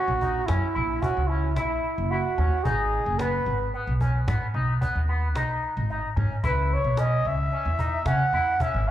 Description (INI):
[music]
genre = progressive instrumental, band music in an uneven meter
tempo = 111 BPM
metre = 7/4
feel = straight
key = C# dorian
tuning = A4 = 440 Hz
[part]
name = breathy trumpet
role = melody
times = 0.0-8.9 s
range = E4 to F#5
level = -26 LUFS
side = right 1 dB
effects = slapback echo, digital delay
[part]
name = electric guitar with an envelope filter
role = arpeggios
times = 0.0-8.9 s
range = B3 to E4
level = -31 LUFS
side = left 1 dB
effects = analog chorus, slapback echo, digital delay
[part]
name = upright bass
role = bass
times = 0.1-8.9 s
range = F#1 to C#3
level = -26 LUFS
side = equal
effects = none
[part]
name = cajon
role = drums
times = 0.2-8.9 s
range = none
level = -31 LUFS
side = equal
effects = none
[sound]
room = light reverb, small room ambience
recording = live gig heard through the venue's PA, club ambience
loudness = -22 LUFS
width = side -12 dB against mid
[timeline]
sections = 0.0-8.9 A section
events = none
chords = 0.0 F#7; 2.6 G#m; 6.4 C#m7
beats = 0.48 1.02 1.56 2.11 | 2.65 3.19 3.73 4.27 4.81 5.35 5.89 | 6.43 6.98 7.52 8.06 8.60